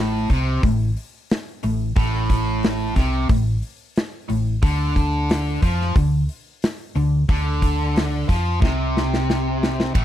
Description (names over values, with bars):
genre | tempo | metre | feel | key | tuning
blues rock power trio and southern rock | 90 BPM | 4/4 | straight | unclear | A4 = 438 Hz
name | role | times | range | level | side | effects
distorted electric guitar | riff | 0.0-10.0 s | A2 to F3 | -23 LUFS | equal | overdrive
hollow-body short-scale fingered electric bass | bass | 0.0-10.0 s | A1 to F2 | -22 LUFS | equal | none
big rock drum kit | drums | 0.3-10.0 s | hi-hat, kick drum, ride cymbal, snare drum | -20 LUFS | equal | none
room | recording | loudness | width
small room ambience | dry, close 1970s-style studio recording | -18 LUFS | side -12 dB against mid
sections
0.0-9.9 A section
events
drum fill 8.6-9.9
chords
0.0 Am; 4.6 Csus24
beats
0.64 1.30 | 1.97 2.64 3.30 3.97 | 4.63 5.30 5.96 6.63 | 7.29 7.96 8.62 9.29 | 9.95